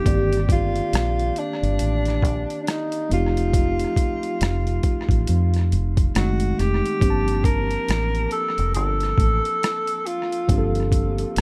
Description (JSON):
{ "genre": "R&B, neo-soul", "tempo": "69 BPM", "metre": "4/4", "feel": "swing 59% on 16ths", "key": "G minor", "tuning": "A4 = 440 Hz", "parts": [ { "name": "breathy tenor saxophone", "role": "melody", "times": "0.0-10.9 s", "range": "D4 to Bb4", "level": "-27 LUFS", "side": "equal", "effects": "tape echo" }, { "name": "mellow tine electric piano", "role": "accompaniment", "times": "0.0-11.4 s", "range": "Eb3 to A5", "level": "-30 LUFS", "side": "equal", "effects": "overdrive, tape echo" }, { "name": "deep dub fingered electric bass", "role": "bass", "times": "0.1-11.4 s", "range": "F1 to F2", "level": "-25 LUFS", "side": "equal", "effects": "none" }, { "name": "boom bap sampler-style drum kit", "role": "drums", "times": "0.1-11.4 s", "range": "hi-hat, kick drum, rim click", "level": "-25 LUFS", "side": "equal", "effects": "none" } ], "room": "little or no reverb", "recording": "echo-heavy mix", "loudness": "-22 LUFS", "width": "mono", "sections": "0.0-11.4 A section", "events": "none", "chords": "0.1 Cm9/G; 3.1 F7; 6.1 F#dim7; 7.0 Gm11" }